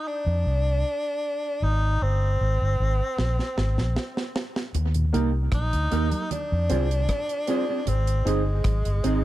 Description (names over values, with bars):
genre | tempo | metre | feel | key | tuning
dub reggae | 77 BPM | 4/4 | straight | unclear | A4 = 440 Hz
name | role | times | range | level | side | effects
breathy tenor saxophone | melody | 0.0-9.2 s | Ab3 to Eb4 | -28 LUFS | equal | tape echo
vintage muted fingered electric bass | bass | 0.3-9.2 s | G1 to F2 | -23 LUFS | equal | none
deep reggae drum kit | drums | 3.2-9.2 s | hi-hat, kick drum, rim click, snare drum | -30 LUFS | right 1 dB | tape echo
congas | percussion | 4.8-8.8 s | none | -37 LUFS | right 5 dB | none
mellow tonewheel organ | accompaniment | 5.0-5.1 s | Eb2 to Bb2 | -30 LUFS | left 2 dB | chorus vibrato, slow rotary speaker
mellow electric guitar | accompaniment | 5.1-9.2 s | Bb3 to Ab4 | -29 LUFS | right 5 dB | wide subtle chorus, tape echo
dark upright piano | stabs | 5.1-9.2 s | Bb3 to C5 | -33 LUFS | left 2 dB | tape echo
room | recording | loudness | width
light reverb, small room ambience | dark, warm production | -22 LUFS | side -15 dB against mid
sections
0.0-9.2 A section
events
break 0.0-4.7; drum fill 3.2-4.7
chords
0.1 F5; 1.6 Ab; 3.2 Abadd9; 4.7 Eb; 6.3 Fm; 7.9 Ab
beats
0.06 0.84 | 1.62 2.40 3.18 3.96 | 4.75 5.53 6.31 7.09 | 7.87 8.65